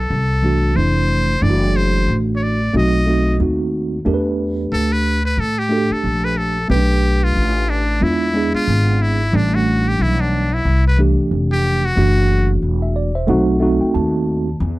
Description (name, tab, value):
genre	hip hop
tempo	91 BPM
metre	4/4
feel	swing 59% on 16ths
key	E minor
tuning	A4 = 440 Hz
part	trumpet with metal mute	melody	0.0-12.5 s	D4 to D#5	-21 LUFS	left 1 dB	none
part	upright bass	bass	0.0-14.8 s	E1 to A2	-18 LUFS	equal	none
part	mellow tine electric piano	accompaniment	0.4-14.6 s	E3 to A5	-19 LUFS	right 2 dB	medium stereo tremolo
room	little or no reverb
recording	dry, close 1970s-style studio recording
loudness	-15 LUFS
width	side -19 dB against mid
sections	0.0-4.1 A section; 4.1-14.6 B section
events	muted trumpet solo 4.1-14.6; tine electric piano fill 12.6-14.6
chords	0.0 Amadd11; 1.4 D9/F#; 2.7 B7b9; 4.1 Em7; 6.7 G9; 8.0 E7b9; 9.3 Am11; 12.0 E9sus4; 13.3 B7b9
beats	0.10 0.76 | 1.42 2.08 2.74 3.40 | 4.06 4.72 5.38 6.04 | 6.70 7.36 8.02 8.68 | 9.34 9.99 10.65 11.31 | 11.97 12.63 13.29 13.95 | 14.61